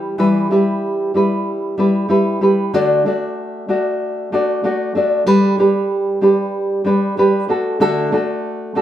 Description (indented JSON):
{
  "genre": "pop",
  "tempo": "94 BPM",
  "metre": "4/4",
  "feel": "straight",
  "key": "unclear",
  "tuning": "A4 = 441 Hz",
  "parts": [
    { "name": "nylon-string guitar", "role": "solo", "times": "0.0-8.8 s", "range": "D3 to D5", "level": "-14 LUFS", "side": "equal", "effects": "none" }
  ],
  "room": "moderate large studio reverb, RT60 0.8 s",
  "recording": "band playing live in one room",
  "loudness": "-14 LUFS",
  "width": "side -11 dB against mid",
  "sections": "0.2-8.8 A section",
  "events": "none",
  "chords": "0.2 Em; 2.7 D; 5.3 G; 7.5 D"
}